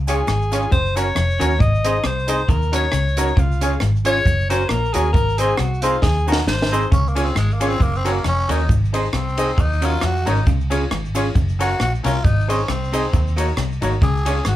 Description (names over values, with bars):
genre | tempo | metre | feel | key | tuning
ska | 135 BPM | 4/4 | swing 55% on 8ths | Db major | A4 = 439 Hz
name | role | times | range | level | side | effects
vintage muted fingered electric bass | bass | 0.0-14.6 s | F1 to F2 | -21 LUFS | equal | none
bright alto saxophone | melody | 0.1-6.9 s | F4 to Eb5 | -22 LUFS | left 2 dB | none
archtop guitar, miked and amplified | accompaniment | 0.1-14.4 s | Bb3 to Db5 | -25 LUFS | right 4 dB | none
clear upright piano | stabs | 0.1-14.4 s | C4 to Eb5 | -25 LUFS | left 3 dB | none
compact cocktail drum kit | drums | 0.1-14.6 s | hi-hat, kick drum, ride cymbal, rim click, snare drum | -21 LUFS | right 1 dB | none
cabasa | percussion | 0.1-14.6 s | none | -40 LUFS | right 6 dB | tape echo
semi-hollow electric guitar | riff | 0.3-14.6 s | F2 to F3 | -25 LUFS | left 3 dB | spring reverb
growling tenor saxophone | melody | 6.9-14.6 s | Ab3 to Ab4 | -24 LUFS | left 1 dB | none
room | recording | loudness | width
moderate studio ambience, RT60 0.5 s | band playing live in one room | -16 LUFS | side -14 dB against mid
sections
0.0-6.9 A section; 6.9-14.6 A section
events
alto saxophone solo 0.0-6.9; drum fill 6.0-6.9; tenor saxophone solo 6.9-14.6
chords
0.0 Db; 0.7 Gb; 1.6 Ab; 2.5 Ebm7; 3.4 Db; 4.3 Gb; 5.1 Ab; 6.0 Ebm7; 6.5 Ab; 6.9 Db; 7.8 Gb; 8.7 Ab; 9.6 Ebm7; 10.5 Db; 11.4 Gb; 12.2 Ab; 13.1 Ebm7; 14.0 Db